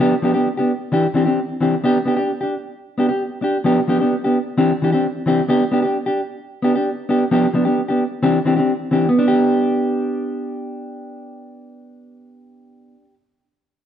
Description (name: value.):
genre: highlife.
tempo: 131 BPM.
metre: 4/4.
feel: straight.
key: G major.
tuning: A4 = 439 Hz.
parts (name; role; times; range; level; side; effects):
mellow electric guitar; solo; 0.0-13.1 s; E3 to G4; -16 LUFS; equal; none.
room: wet stone room reverb, RT60 1.4 s.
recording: band playing live in one room.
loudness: -16 LUFS.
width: side -9 dB against mid.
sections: 0.0-9.2 A section; 9.2-12.8 B section.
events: none.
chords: 0.0 G7; 0.9 Cadd9; 1.8 G; 3.7 G7; 4.6 Cadd9; 5.5 G; 7.3 G7; 8.2 Cadd9; 9.2 G.